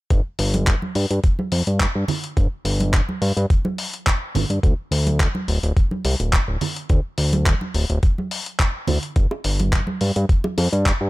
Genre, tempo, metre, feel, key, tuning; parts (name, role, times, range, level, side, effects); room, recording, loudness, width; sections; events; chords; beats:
nu-disco, nu disco; 106 BPM; 4/4; swing 54% on 16ths; A4 = 443 Hz
fat analog bass; bass; 0.1-11.1 s; D1 to G2; -20 LUFS; equal
dusty soul sampler-style drum kit; drums; 0.1-11.0 s; handclaps, hi-hat; -25 LUFS; left 1 dB
electronic kick drum; drums; 0.1-11.0 s; -17 LUFS; equal
congas and bongos; percussion; 0.5-10.7 s; -26 LUFS; right 2 dB
little or no reverb; -18 LUFS; side -19 dB against mid
0.1-11.1 A section
| 0.11 0.67 1.24 1.80 | 2.37 2.94 3.50 4.07 | 4.63 5.20 5.77 6.33 | 6.90 7.46 8.03 8.60 | 9.16 9.73 10.29 10.86